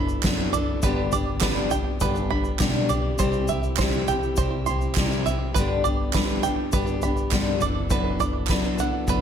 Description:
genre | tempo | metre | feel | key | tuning
indie folk with a building arrangement | 102 BPM | 4/4 | straight | G major | A4 = 440 Hz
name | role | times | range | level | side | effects
picked steel-string acoustic guitar | accompaniment | 0.0-9.2 s | G2 to A4 | -27 LUFS | left 4 dB | none
mellow tonewheel organ | sustained chords | 0.0-9.2 s | C3 to B4 | -35 LUFS | right 7 dB | slow rotary speaker, chorus vibrato
bluegrass banjo | arpeggios | 0.0-9.2 s | B4 to C6 | -28 LUFS | right 10 dB | slapback echo
upright bass | bass | 0.0-9.2 s | F#1 to C3 | -31 LUFS | equal | none
tube shaker | percussion | 0.1-9.2 s | none | -38 LUFS | left 6 dB | none
soft-mallet drum kit | drums | 0.2-9.2 s | kick drum, snare drum, toms | -25 LUFS | equal | none
group handclap | percussion | 0.2-8.6 s | none | -30 LUFS | right 17 dB | none
room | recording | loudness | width
light reverb, studio reverb | none | -21 LUFS | side -8 dB against mid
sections
0.0-9.2 A section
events
none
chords
0.0 D6/F#; 0.8 G; 3.2 C; 5.5 G; 7.6 D6/F#

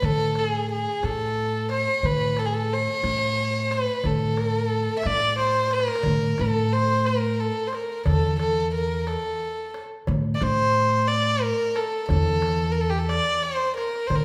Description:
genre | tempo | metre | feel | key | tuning
Arabic maqam ensemble | 60 BPM (dotted quarters) | 6/8 | straight | A maqam suznak, A maqam kurd from 6.1 s | A4 = 440 Hz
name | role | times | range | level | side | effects
warm violin | melody | 0.0-14.2 s | G4 to E5 | -26 LUFS | equal | none
upright bass | bass | 0.0-14.2 s | E2 to A2 | -28 LUFS | equal | none
darbuka | percussion | 0.0-14.2 s | none | -32 LUFS | equal | none
room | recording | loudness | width
wet recital hall reverb, RT60 1.3 s | recorded in a church or concert hall | -24 LUFS | mono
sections
0.0-6.1 A section; 6.1-14.2 B section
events
drum fill 5.4-6.1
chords
none

